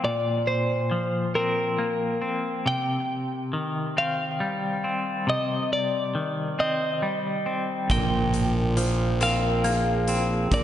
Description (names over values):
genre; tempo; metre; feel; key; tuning
post-rock; 46 BPM (dotted quarters); 6/8; straight; C minor; A4 = 438 Hz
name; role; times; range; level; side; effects
twelve-string electric guitar; melody; 0.0-10.6 s; Bb4 to G5; -27 LUFS; left 1 dB; analog delay
semi-hollow electric guitar; arpeggios; 0.0-10.6 s; Bb2 to C4; -27 LUFS; left 1 dB; tremolo, slapback echo, analog delay
vibraphone with hard mallets; arpeggios; 7.9-10.6 s; Ab4 to C5; -31 LUFS; right 4 dB; slapback echo, analog delay
fuzz fingered electric bass; bass; 7.9-10.6 s; Bb1; -24 LUFS; right 1 dB; overdrive
big rock drum kit; drums; 7.9-10.6 s; hi-hat, kick drum; -30 LUFS; right 1 dB; none
room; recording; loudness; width
moderate lush hall reverb, RT60 2.6 s; big arena sound, nothing above 10.8 kHz; -23 LUFS; side -11 dB against mid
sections
0.0-10.6 A section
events
none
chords
0.0 Bbsus2; 2.7 Cm; 7.9 Bbsus2